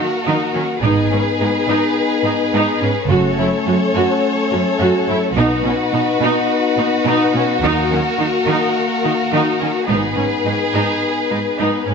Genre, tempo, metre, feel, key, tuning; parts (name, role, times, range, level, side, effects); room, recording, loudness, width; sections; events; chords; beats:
cinematic; 106 BPM; 4/4; straight; A4 = 436 Hz
rich chamber violin section; melody; 0.0-11.9 s; A#4 to C#5; -23 LUFS; left 6 dB
rich symphonic violin section; second line; 0.0-11.9 s; F#4 to A4; -22 LUFS; left 1 dB
rich symphonic viola section; accompaniment; 0.0-11.9 s; C#4 to F#4; -21 LUFS; right 2 dB
mellow French horn section; sustained chords; 0.0-11.8 s; A3 to F#4; -21 LUFS; left 4 dB
rich symphonic cello section; bass; 0.0-11.9 s; F#2 to D#3; -22 LUFS; right 4 dB
rich symphonic double bass section; bass; 0.8-10.2 s; F#1 to D#2; -22 LUFS; right 4 dB
moderate scoring stage reverb, RT60 1.7 s; nothing above 7.8 kHz; -14 LUFS; side -6 dB against mid
0.0-11.9 A section
build-up 0.0-11.9
0.0 D#m; 0.8 G#m; 3.1 F#m; 5.4 B; 7.6 D#m; 9.9 G#m
0.26 | 0.83 1.39 1.96 2.53 | 3.10 3.66 4.23 4.79 | 5.36 5.93 6.49 7.06 | 7.63 8.19 8.76 9.32 | 9.89 10.45 11.02 11.58